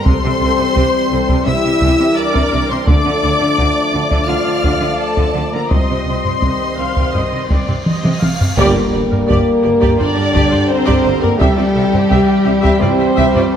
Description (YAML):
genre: cinematic, epic orchestral film score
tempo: 85 BPM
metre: 4/4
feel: straight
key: G minor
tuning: A4 = 440 Hz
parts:
  - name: warm symphonic violin section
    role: melody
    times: 0.0-13.6 s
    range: E4 to F6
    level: -22 LUFS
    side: left 3 dB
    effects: none
  - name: dark symphonic violin section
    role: second line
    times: 0.0-13.6 s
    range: G4 to F5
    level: -21 LUFS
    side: left 2 dB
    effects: none
  - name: warm symphonic viola section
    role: accompaniment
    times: 0.0-13.4 s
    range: D4 to F5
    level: -22 LUFS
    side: right 1 dB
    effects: none
  - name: clear trombone section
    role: sustained chords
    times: 0.0-13.6 s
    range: D3 to A3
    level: -22 LUFS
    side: right 4 dB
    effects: none
  - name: mellow French horn section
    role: sustained chords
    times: 0.0-13.6 s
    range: G3 to F4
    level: -18 LUFS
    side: left 2 dB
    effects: none
  - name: clear symphonic double bass section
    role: bass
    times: 0.1-13.2 s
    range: G1 to D2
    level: -22 LUFS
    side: right 3 dB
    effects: none
  - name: rich symphonic cello section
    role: bass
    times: 0.1-13.4 s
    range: G2 to D3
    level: -23 LUFS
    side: right 3 dB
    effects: none
  - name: solo taiko drums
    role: drums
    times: 0.1-13.6 s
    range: none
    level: -18 LUFS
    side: equal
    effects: none
  - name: cymbal swell and impact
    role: sound effects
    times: 7.5-11.4 s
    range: none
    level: -28 LUFS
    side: equal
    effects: none
room: moderate scoring stage reverb, RT60 1.6 s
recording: none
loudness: -12 LUFS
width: side -8 dB against mid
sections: 0.0-8.6 A section; 8.6-13.6 B section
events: cymbal swell 7.5-8.6; drum fill 7.9-8.6; band accent 8.6-9.3; impact 8.6-11.4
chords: 0.1 C; 2.9 Dm; 5.7 Cm; 8.6 Gm; 11.4 C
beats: | 0.06 0.76 1.47 2.17 | 2.88 3.58 4.29 5.00 | 5.71 6.43 7.15 7.86 | 8.58 9.29 9.99 10.70 | 11.40 12.10 12.81 13.52